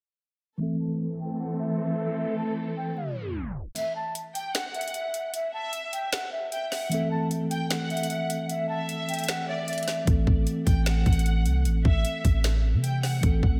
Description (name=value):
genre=hip hop, trap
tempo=152 BPM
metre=4/4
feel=half-time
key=A dorian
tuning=A4 = 440 Hz
part: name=breathy mellow concert flute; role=melody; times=0.6-10.1 s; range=E5 to A5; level=-35 LUFS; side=equal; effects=low-pass filter
part: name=mellow tine electric piano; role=accompaniment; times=0.6-3.8, 6.9-13.6 s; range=E3 to A4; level=-33 LUFS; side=equal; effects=low-pass filter
part: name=warm symphonic string section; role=sustained chords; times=0.6-3.7 s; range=E3 to A4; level=-35 LUFS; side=equal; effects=low-pass filter
part: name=reverse cymbal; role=sound effects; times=3.1-3.8 s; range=none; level=-49 LUFS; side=equal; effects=none
part: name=trap drum kit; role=drums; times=3.8-13.5 s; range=finger snaps, hi-hat, kick drum, snare drum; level=-30 LUFS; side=equal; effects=none
part: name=warm studio violin section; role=second line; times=4.3-13.2 s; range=D5 to G5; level=-38 LUFS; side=equal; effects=diffuse ambient delay
part: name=warm 808-style bass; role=bass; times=10.1-13.6 s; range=A1 to C3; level=-26 LUFS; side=equal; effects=none
room=moderate lush hall reverb, RT60 1.8 s, studio reverb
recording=dreamy mix soaked in reverb, tape stop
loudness=-27 LUFS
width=mono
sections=0.6-3.8 A section; 3.8-13.6 B section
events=filter sweep 0.6-3.8; tape stop 3.0-3.8; reverse cymbal 3.1-3.8; kick muted 3.8-10.1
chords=0.6 Am; 3.8 N.C.; 6.9 Am